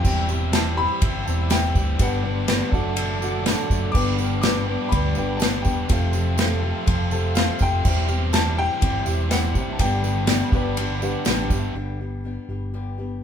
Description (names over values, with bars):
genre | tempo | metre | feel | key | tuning
folk rock and heartland rock | 123 BPM | 4/4 | straight | G major | A4 = 440 Hz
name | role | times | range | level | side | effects
clear baby grand piano | melody | 0.0-10.5 s | F5 to D6 | -29 LUFS | left 3 dB | none
dark upright piano | accompaniment | 0.0-11.7 s | F#4 to B5 | -34 LUFS | right 3 dB | none
picked acoustic archtop guitar | accompaniment | 0.0-13.2 s | G2 to B4 | -30 LUFS | left 4 dB | none
muted studio string section | sustained chords | 0.0-11.7 s | G4 to E6 | -36 LUFS | right 1 dB | none
biting overdriven guitar | riff | 0.0-11.7 s | F2 to A4 | -28 LUFS | equal | none
hollow-body short-scale fingered electric bass | bass | 0.0-13.2 s | E1 to D2 | -25 LUFS | equal | none
unplugged drum kit | drums | 0.0-11.6 s | crash cymbal, kick drum, ride cymbal, snare drum | -23 LUFS | equal | none
tambourine | percussion | 0.0-11.6 s | none | -38 LUFS | right 8 dB | none
room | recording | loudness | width
moderate studio ambience, RT60 0.5 s | band playing live in one room | -20 LUFS | side -8 dB against mid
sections
0.0-11.8 A section; 11.8-13.2 B section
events
upright piano fill 11.0-11.8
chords
0.0 C/E; 2.0 G; 2.7 D/F#; 3.9 G; 5.9 Fadd9; 7.8 C/E; 9.8 G